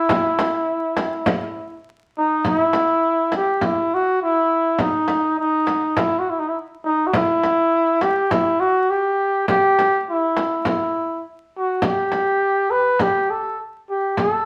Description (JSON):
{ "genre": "Persian modal ensemble", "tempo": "102 BPM", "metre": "4/4", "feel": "straight", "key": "E avaz esfahan", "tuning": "A4 = 440 Hz", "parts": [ { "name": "breathy flugelhorn", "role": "melody", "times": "0.0-14.5 s", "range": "D#4 to B4", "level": "-20 LUFS", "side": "equal", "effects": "none" }, { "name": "frame drum", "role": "percussion", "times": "0.1-14.3 s", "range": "none", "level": "-26 LUFS", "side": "equal", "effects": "none" } ], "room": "wet studio reverb, RT60 0.8 s", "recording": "vinyl crackle", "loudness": "-20 LUFS", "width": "mono", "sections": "0.0-2.4 A section; 2.4-14.5 B section", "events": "none", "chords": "none", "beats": "| 0.10 0.68 1.27 1.86 | 2.44 3.03 3.62 4.20 | 4.79 5.38 5.97 6.55 | 7.14 7.73 8.31 8.90 | 9.49 10.07 10.66 11.25 | 11.84 12.42 13.01 13.59 | 14.18" }